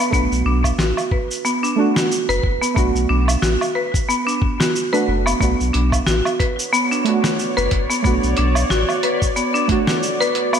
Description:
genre	organic downtempo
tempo	91 BPM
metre	4/4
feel	swing 56% on 16ths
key	B minor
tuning	A4 = 439 Hz
part	deep mellow chord stab	accompaniment	0.0-10.6 s	A3 to F#4	-23 LUFS	right 5 dB	chorus, sidechain pumping, digital delay, slapback echo
part	buzzing marimba with hard mallets	arpeggios	0.0-10.6 s	B3 to B4	-20 LUFS	equal	digital delay, slapback echo
part	warm sub bass	bass	0.1-8.8 s	F#1 to B1	-20 LUFS	left 1 dB	sidechain pumping
part	dusty soul sampler-style drum kit	drums	0.1-10.6 s	hi-hat, shaker, snare drum, woodblock	-23 LUFS	right 1 dB	none
part	electronic kick drum	drums	0.1-9.8 s	none	-21 LUFS	left 1 dB	none
part	bowed-like drone	sustained chords	6.2-10.6 s	B3 to D5	-24 LUFS	left 1 dB	built-in reverb, sidechain pumping
room	wet lush hall reverb, RT60 1.7 s, digital ambience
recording	big arena sound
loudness	-16 LUFS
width	side -8 dB against mid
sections	0.0-10.6 A section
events	none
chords	0.0 Bm

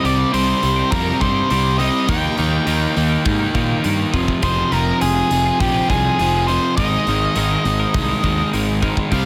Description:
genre	quiet-loud alternative rock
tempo	102 BPM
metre	4/4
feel	straight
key	unclear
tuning	A4 = 440 Hz
part	octave-fuzz lead guitar	melody	0.0-9.3 s	G4 to G5	-23 LUFS	equal	distortion
part	twelve-string electric guitar	arpeggios	0.0-9.3 s	C3 to Bb4	-30 LUFS	equal	analog delay
part	overdriven semi-hollow guitar	riff	0.0-9.3 s	F2 to Eb4	-22 LUFS	equal	none
part	fuzz fingered electric bass	bass	0.0-9.3 s	F1 to Bb2	-24 LUFS	equal	overdrive
part	big rock drum kit	drums	0.0-9.3 s	hi-hat, kick drum	-28 LUFS	equal	none
room	light reverb, small room ambience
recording	none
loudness	-18 LUFS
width	mono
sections	0.0-9.3 A section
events	none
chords	0.0 Cm; 2.1 Ebadd9; 4.1 Fm; 6.8 Abadd9

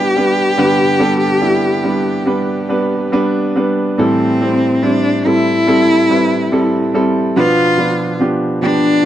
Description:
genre	pop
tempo	71 BPM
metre	4/4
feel	straight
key	A minor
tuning	A4 = 440 Hz
part	clear cello	melody	0.0-9.1 s	C4 to G4	-15 LUFS	left 1 dB	none
part	clear baby grand piano	accompaniment	0.0-9.1 s	G2 to D5	-14 LUFS	right 1 dB	none
room	light reverb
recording	dry, close 1970s-style studio recording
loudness	-12 LUFS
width	side -12 dB against mid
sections	0.0-4.0 A section; 4.0-9.1 B section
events	none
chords	0.0 G; 4.0 Am7; 7.4 Bdim

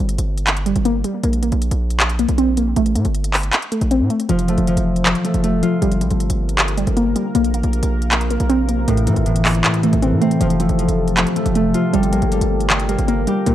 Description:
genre	hip hop, trap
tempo	157 BPM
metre	4/4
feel	half-time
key	unclear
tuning	A4 = 441 Hz
part	concert harp	accompaniment	0.0-1.0, 4.3-13.5 s	A2 to G4	-20 LUFS	left 1 dB	none
part	warbly dusty pluck	arpeggios	0.0-13.5 s	F3 to C4	-20 LUFS	equal	chorus, phaser, analog delay
part	hard-hitting 808-style bass	bass	0.0-13.5 s	F1 to A2	-19 LUFS	equal	none
part	trap drum kit	drums	0.1-13.5 s	handclaps, hi-hat	-20 LUFS	equal	none
part	deep dark ambient pad	sustained chords	4.8-13.5 s	C3 to Bb4	-26 LUFS	equal	chorus, built-in reverb
room	digital ambience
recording	dry, gritty hardware recording, cassette tape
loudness	-15 LUFS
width	side -12 dB against mid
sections	0.0-13.5 A section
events	break 0.0-4.3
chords	0.0 Gm; 1.2 Bbsus2; 2.8 Am; 4.3 F; 5.8 Gm; 7.3 Bbsus2; 8.9 Am; 10.4 F; 11.9 Gm

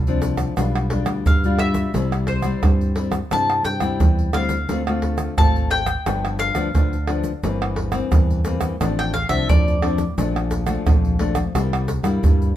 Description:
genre	samba and choro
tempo	88 BPM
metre	4/4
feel	straight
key	unclear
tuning	A4 = 440 Hz
part	nylon-string guitar	accompaniment	0.0-12.6 s	F2 to F4	-24 LUFS	left 4 dB	none
part	fingered electric bass	bass	0.0-12.6 s	G1 to G2	-24 LUFS	equal	none
part	egg shaker, pandeiro, surdo and tamborim	percussion	0.1-12.6 s	none	-20 LUFS	right 2 dB	none
part	bowl-back mandolin	melody	1.3-10.1 s	C5 to A5	-24 LUFS	left 2 dB	none
room	moderate studio reverb, RT60 0.9 s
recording	minimal, uncompressed stereo recording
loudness	-18 LUFS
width	side -12 dB against mid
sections	0.0-12.6 A section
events	mandolin solo 0.0-12.6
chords	0.0 Dm7; 0.6 G7/B; 2.0 C; 4.7 Dm7; 6.1 G7; 7.4 C7/G; 8.8 F6/A; 10.2 Bbmaj7; 11.5 C7

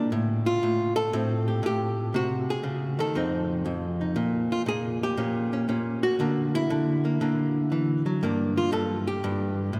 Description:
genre	solo jazz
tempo	119 BPM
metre	4/4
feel	swing 68% on 8ths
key	unclear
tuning	A4 = 440 Hz
part	archtop guitar, miked and amplified	solo	0.0-9.8 s	F2 to A4	-26 LUFS	equal	none
room	wet cathedral reverb, RT60 6.6 s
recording	recorded in a church or concert hall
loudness	-26 LUFS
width	mono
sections	0.0-9.8 A section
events	none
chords	0.1 Am7; 2.1 Cdim; 3.1 F7; 4.2 Bbm; 6.2 D; 8.2 Gm

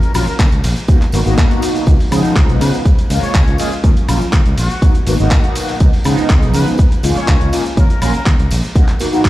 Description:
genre	filtered disco house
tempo	122 BPM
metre	4/4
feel	straight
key	G# dorian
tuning	A4 = 440 Hz
part	mellow trumpet section	melody	0.0-8.2 s	F#4 to C#5	-28 LUFS	left 2 dB	sidechain pumping, digital delay
part	dusty soul sampler-style drum kit	drums	0.0-9.3 s	handclaps, hi-hat, ride cymbal, shaker, woodblock	-22 LUFS	equal	sidechain pumping on hats, studio reverb, sidechain pumping on perc, sidechain pumping on cymbals
part	tambourine	percussion	0.0-9.3 s	none	-35 LUFS	right 1 dB	none
part	mellow synth brass	accompaniment	0.1-9.3 s	E#3 to F#4	-18 LUFS	equal	chorus, phaser, sidechain pumping
part	overdriven fingered electric bass	bass	0.1-8.6 s	G#1 to C#3	-16 LUFS	equal	sidechain pumping
part	electronic kick drum	drums	0.4-9.3 s	none	-11 LUFS	equal	studio reverb
room	little or no reverb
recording	played on a big sound system in a bare room, stone room reverb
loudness	-11 LUFS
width	side -16 dB against mid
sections	0.0-9.3 A section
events	none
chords	0.0 D#m7; 0.9 G#m9; 1.9 C#9; 2.9 A#m7/C#; 3.8 D#m7; 4.8 G#m9; 5.8 C#9; 6.8 A#m7/C#; 7.8 D#m7; 8.8 G#m9 (rootless)

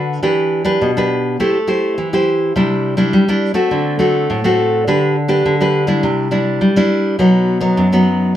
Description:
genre	samba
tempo	103 BPM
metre	4/4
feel	straight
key	E minor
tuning	A4 = 440 Hz
part	nylon-string guitar	solo	0.0-8.3 s	F#2 to C5	-13 LUFS	equal	none
room	wet small room reverb, RT60 0.5 s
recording	band playing live in one room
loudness	-13 LUFS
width	side -11 dB against mid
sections	0.2-8.4 A section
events	none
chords	0.2 Em7; 1.4 Am7; 2.6 Cadd9; 3.7 D7; 4.9 G/D; 6.0 Cadd9; 7.2 B

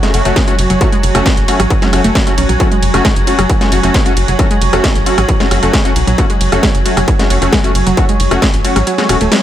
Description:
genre	driving peak-time techno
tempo	134 BPM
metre	4/4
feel	straight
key	F# minor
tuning	A4 = 440 Hz
part	analog pluck	riff	0.0-9.4 s	F#3 to C#4	-19 LUFS	equal	chorus, tube saturation, sidechain pumping, digital delay
part	rave stab	stabs	0.0-9.2 s	A3 to F#4	-18 LUFS	left 3 dB	chorus, built-in reverb, sidechain pumping, dub echo
part	swarming drone	drone	0.0-9.4 s	F#3 to F#4	-21 LUFS	right 2 dB	built-in reverb, sidechain pumping
part	techno drum kit	drums	0.0-9.4 s	hi-hat, ride cymbal, rim click, snare drum	-17 LUFS	equal	sidechain pumping on hats, sidechain pumping on cymbals
part	deep dark ambient pad	texture	0.0-9.4 s	F#4 to G#5	-20 LUFS	right 2 dB	chorus, built-in reverb, sidechain pumping
part	tight sequencer bass	bass	0.1-9.3 s	E1 to B1	-16 LUFS	equal	tube saturation, sidechain pumping
part	electronic kick drum	drums	0.4-8.5 s	none	-14 LUFS	equal	distortion
room	light reverb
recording	none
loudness	-9 LUFS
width	side -11 dB against mid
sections	0.0-9.4 A section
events	kick drops out 8.9-9.4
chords	0.0 F#m

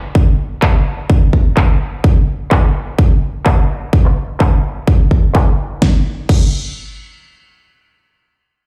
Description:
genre	progressive house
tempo	127 BPM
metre	4/4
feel	straight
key	none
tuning	none
part	electronic kick drum	drums	0.2-6.4 s	none	-13 LUFS	equal	overdrive, studio reverb
part	pop drum kit	drums	0.6-6.4 s	crash cymbal, handclaps, snare drum	-24 LUFS	equal	sidechain pumping on hats, low-pass filter on hats, studio reverb, sidechain pumping on perc, low-pass filter on perc, low-pass filter on snare, sidechain pumping on cymbals, low-pass filter on cymbals
room	digital ambience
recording	played on a big sound system in a bare room, large studio reverb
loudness	-14 LUFS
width	mono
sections	0.0-5.8 A section; 5.8-8.7 B section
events	filter sweep on drum 0.0-5.8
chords	none

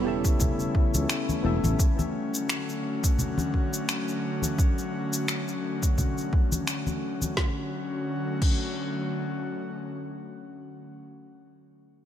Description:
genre	sunset chillout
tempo	86 BPM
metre	4/4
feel	swing 56% on 16ths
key	D major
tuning	A4 = 442 Hz
part	soft electric-piano-like synth keys	accompaniment	0.0-1.8 s	B3 to E5	-31 LUFS	moving between left 9 dB and right 7 dB	chorus, auto-pan, ping-pong delay
part	airy breathy pad	sustained chords	0.0-10.9 s	C#3 to F#4	-30 LUFS	left 1 dB	chorus
part	sustaining fretless electric bass	bass	0.0-1.7 s	E1 to C#2	-28 LUFS	equal	none
part	deep house drum kit	drums	0.2-8.6 s	crash cymbal, finger snaps, shaker, snare drum	-32 LUFS	left 1 dB	none
part	electronic kick drum	drums	0.2-8.6 s	none	-24 LUFS	equal	none
part	congas	percussion	0.4-7.3 s	none	-31 LUFS	left 1 dB	none
room	light reverb, digital ambience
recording	none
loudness	-25 LUFS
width	side -10 dB against mid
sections	0.0-7.4 A section; 7.4-10.2 B section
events	none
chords	0.0 A9; 1.8 Dmaj7

